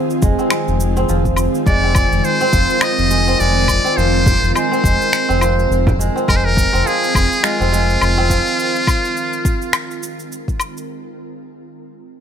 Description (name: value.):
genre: organic downtempo.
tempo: 104 BPM.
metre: 4/4.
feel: swing 57% on 16ths.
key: F minor.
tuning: A4 = 437 Hz.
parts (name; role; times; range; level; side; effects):
ethereal airy pad; sustained chords; 0.0-10.9 s; Eb3 to Bb4; -23 LUFS; right 1 dB; ensemble chorus, built-in reverb, sidechain pumping.
kora; arpeggios; 0.0-10.6 s; F3 to C4; -21 LUFS; right 2 dB; digital delay.
electronic shaker, finger snaps and woodblock; drums; 0.1-10.9 s; none; -22 LUFS; left 2 dB; none.
round analog bass; bass; 0.2-8.4 s; F1; -18 LUFS; equal; none.
electronic kick drum; drums; 0.2-10.6 s; none; -18 LUFS; equal; none.
trumpet with metal mute; melody; 1.7-10.3 s; F4 to Eb5; -18 LUFS; equal; digital delay.
frame drum; percussion; 4.3-6.0 s; none; -21 LUFS; right 2 dB; none.
room: light reverb, studio reverb.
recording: none.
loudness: -13 LUFS.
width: side -8 dB against mid.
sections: 0.0-10.9 A section.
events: none.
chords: 0.0 Fm7.